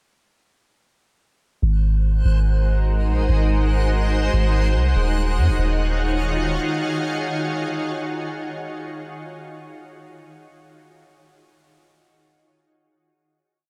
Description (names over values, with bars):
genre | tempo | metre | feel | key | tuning
hip hop | 144 BPM | 4/4 | half-time | Eb dorian | A4 = 440 Hz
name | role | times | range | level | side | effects
shimmering ambient pad | sustained chords | 2.3-8.3 s | Eb3 to Db5 | -28 LUFS | equal | chorus, built-in reverb
soft 808-style bass | bass | 1.6-6.6 s | Eb1 to Gb2 | -21 LUFS | equal | none
backwards swelling texture | texture | 1.6-6.6 s | C5 to Gb6 | -36 LUFS | equal | built-in reverb
room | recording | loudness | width
light reverb, digital ambience | none | -21 LUFS | mono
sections
1.6-8.3 verse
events
none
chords
1.6 Ab7; 5.0 Ebm11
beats
| 1.62 2.04 2.46 2.87 | 3.29 3.71 4.12 4.54 | 4.96 5.37 5.79 6.21 | 6.62 7.04 7.46 7.87